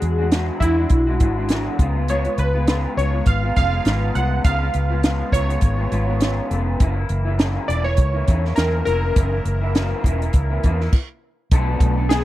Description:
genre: indie pop, bedroom pop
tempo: 102 BPM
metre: 4/4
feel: swing 55% on 16ths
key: unclear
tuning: A4 = 439 Hz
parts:
  - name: warm analog keys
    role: melody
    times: 0.0-12.2 s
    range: E4 to F#5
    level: -24 LUFS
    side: equal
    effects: lush chorus, slapback echo
  - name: electric guitar through a small old amp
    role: accompaniment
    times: 0.0-12.2 s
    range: F#2 to A4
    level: -26 LUFS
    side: left 2 dB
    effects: analog chorus, vibrato effect
  - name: vintage muted fingered electric bass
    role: bass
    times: 0.0-12.2 s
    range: E1 to E2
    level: -21 LUFS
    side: equal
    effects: none
  - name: compact cocktail drum kit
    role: drums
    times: 0.0-12.2 s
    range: crash cymbal, hi-hat, kick drum, snare drum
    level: -17 LUFS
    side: equal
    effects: none
  - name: string machine, full ensemble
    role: sustained chords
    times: 11.5-12.2 s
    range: A3 to D4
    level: -28 LUFS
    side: right 1 dB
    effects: ensemble chorus
room: small room reverb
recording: dry, close 1970s-style studio recording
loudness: -17 LUFS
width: side -15 dB against mid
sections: 0.0-11.5 A section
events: stop 10.9-11.5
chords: 0.0 E9; 1.8 C#7; 6.8 F#7; 11.5 Bm11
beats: 0.32 0.91 1.50 | 2.08 2.67 3.26 3.85 | 4.44 5.03 5.62 6.21 | 6.80 7.39 7.98 8.57 | 9.16 9.75 10.34 10.93 | 11.52 12.10

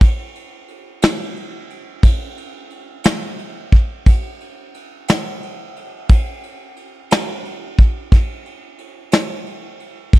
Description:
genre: pop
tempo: 59 BPM (dotted quarters)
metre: 6/8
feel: straight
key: none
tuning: none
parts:
  - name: soft brush drum kit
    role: drums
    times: 0.0-10.2 s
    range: kick drum, ride cymbal, snare drum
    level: -14 LUFS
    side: equal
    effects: none
room: little or no reverb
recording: dry, close 1970s-style studio recording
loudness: -15 LUFS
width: side -18 dB against mid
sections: 0.0-10.2 A section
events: none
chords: none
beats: | 0.01 1.02 | 2.03 3.04 | 4.06 5.08 | 6.09 7.11 | 8.12 9.13 | 10.13

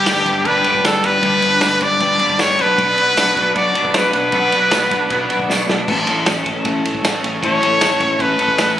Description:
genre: indie rock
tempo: 155 BPM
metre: 4/4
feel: straight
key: unclear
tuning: A4 = 439 Hz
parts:
  - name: brilliant trumpet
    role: melody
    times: 0.0-8.8 s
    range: G4 to D5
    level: -15 LUFS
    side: left 1 dB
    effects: slapback echo
  - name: sweeping resonant pad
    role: sustained chords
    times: 0.0-8.8 s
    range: A4 to D6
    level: -29 LUFS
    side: right 2 dB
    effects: none
  - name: twelve-string electric guitar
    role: riff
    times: 0.0-8.8 s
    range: G2 to A4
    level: -22 LUFS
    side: left 5 dB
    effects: analog chorus
  - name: twelve-string electric guitar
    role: riff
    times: 0.0-5.9 s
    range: G2 to D4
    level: -23 LUFS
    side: right 6 dB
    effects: ensemble chorus, slapback echo
  - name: fuzz fingered electric bass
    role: bass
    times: 0.0-8.7 s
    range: G1 to B1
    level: -26 LUFS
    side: right 1 dB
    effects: overdrive
  - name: vintage drum kit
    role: drums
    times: 0.1-8.7 s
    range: crash cymbal, kick drum, ride cymbal, snare drum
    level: -20 LUFS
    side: right 1 dB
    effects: none
  - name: tambourine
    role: percussion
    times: 0.1-8.7 s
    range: none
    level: -30 LUFS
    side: right 3 dB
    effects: none
room: small room ambience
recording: recorded on a phone in the room, studio reverb, compression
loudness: -13 LUFS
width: side -11 dB against mid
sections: 0.0-5.9 A section; 5.9-8.8 A section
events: drum fill 5.5-5.9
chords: 0.0 G; 2.6 Bm; 5.9 A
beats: 0.07 0.46 0.85 | 1.24 1.62 2.01 2.40 | 2.79 3.17 3.56 3.95 | 4.33 4.72 5.11 5.50 | 5.88 6.27 6.65 7.04 | 7.43 7.81 8.20 8.58

